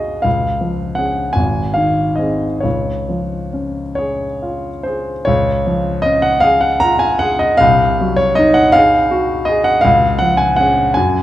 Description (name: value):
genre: classical, romantic nocturne for solo piano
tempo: 44-57 BPM (dotted quarters)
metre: 6/8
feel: rubato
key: Db major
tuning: A4 = 440 Hz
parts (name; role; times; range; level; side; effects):
- warm baby grand piano; solo; 0.0-11.2 s; Ab1 to Bb5; -13 LUFS; equal; none
room: wet recital hall reverb, RT60 1.8 s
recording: dark, warm production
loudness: -13 LUFS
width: side -13 dB against mid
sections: 0.0-5.3 A section; 5.3-11.2 B section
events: none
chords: 0.3 Db; 1.4 Ab; 2.6 Db; 7.6 Ab7/C; 9.9 Db